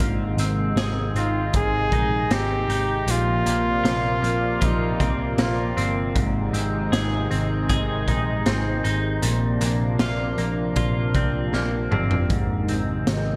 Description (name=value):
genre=dream pop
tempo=78 BPM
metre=4/4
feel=straight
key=Ab lydian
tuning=A4 = 440 Hz
part: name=lush unison pad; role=sustained chords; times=0.0-13.4 s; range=C3 to D5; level=-29 LUFS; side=equal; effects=chorus
part: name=semi-hollow electric guitar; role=arpeggios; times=0.0-13.4 s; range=Ab2 to Ab4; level=-30 LUFS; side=equal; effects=lush chorus, delay
part: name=vintage muted picked electric bass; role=bass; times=0.0-13.4 s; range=G1 to C2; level=-29 LUFS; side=equal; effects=none
part: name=raw garage drum kit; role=drums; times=0.0-13.3 s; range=hi-hat, kick drum, snare drum, toms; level=-28 LUFS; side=equal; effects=gated reverb
part: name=clear flugelhorn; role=melody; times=1.2-5.9 s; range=Eb4 to Ab4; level=-28 LUFS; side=equal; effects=delay
room=wet lush hall reverb, RT60 2.8 s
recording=bright 1980s-style digital production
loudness=-23 LUFS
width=mono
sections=0.0-13.4 A section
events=drum fill 11.5-12.3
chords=0.0 Ab; 3.1 Bbadd9; 6.2 Ab; 9.2 Bbadd9; 12.3 Ab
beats=| 0.00 0.77 1.54 2.31 | 3.08 3.84 4.61 5.38 | 6.15 6.92 7.69 8.46 | 9.23 10.00 10.77 11.54 | 12.31 13.07